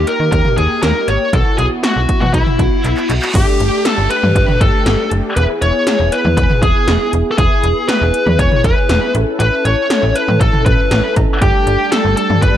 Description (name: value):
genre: synth-pop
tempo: 119 BPM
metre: 4/4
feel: straight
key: unclear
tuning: A4 = 440 Hz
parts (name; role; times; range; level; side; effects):
- high-gain lead guitar; melody; 0.0-12.6 s; E4 to C#5; -16 LUFS; left 1 dB; distortion
- mellow synth brass; accompaniment; 0.0-12.6 s; A3 to A4; -21 LUFS; equal; chorus
- slap-like FM bass; bass; 0.0-12.5 s; E1 to D#3; -16 LUFS; equal; none
- 80s electronic pad drums; drums; 0.1-12.6 s; cowbell, crash cymbal, handclaps, hi-hat, kick drum, snare drum, toms; -16 LUFS; equal; gated reverb on snare and toms, overdrive
- reverse cymbal and downlifter; sound effects; 2.7-7.4 s; none; -28 LUFS; right 2 dB; none
- ensemble organ-string; sustained chords; 11.4-12.6 s; G3 to D4; -22 LUFS; right 2 dB; ensemble chorus
room: light reverb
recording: dark, warm production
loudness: -11 LUFS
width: side -11 dB against mid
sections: 0.0-3.3 A section; 3.3-12.6 B section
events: reverse cymbal 2.7-3.3; drum fill 2.8-3.3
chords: 0.0 D#; 1.3 Bsus4; 3.3 Gsus2; 5.4 E; 9.1 Aadd9; 11.4 Gsus2